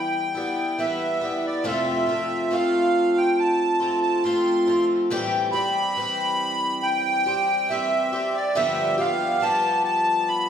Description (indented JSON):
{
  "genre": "acoustic folk duo or small band",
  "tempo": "70 BPM",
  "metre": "4/4",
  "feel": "straight",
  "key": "unclear",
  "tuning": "A4 = 440 Hz",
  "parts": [
    { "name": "accordion", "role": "melody", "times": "0.0-10.5 s", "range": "D5 to C6", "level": "-23 LUFS", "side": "right 1 dB", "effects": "light tremolo tuning" },
    { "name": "picked twelve-string acoustic guitar", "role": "accompaniment", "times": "0.0-10.5 s", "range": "F2 to G4", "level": "-23 LUFS", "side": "left 1 dB", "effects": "none" }
  ],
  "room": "wet recital hall reverb, RT60 1.6 s",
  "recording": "recorded in a church or concert hall",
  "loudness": "-20 LUFS",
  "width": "side -8 dB against mid",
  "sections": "0.0-10.5 A section",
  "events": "none",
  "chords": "0.0 Cmaj7 (rootless); 1.7 F; 5.1 Am7; 8.6 G7"
}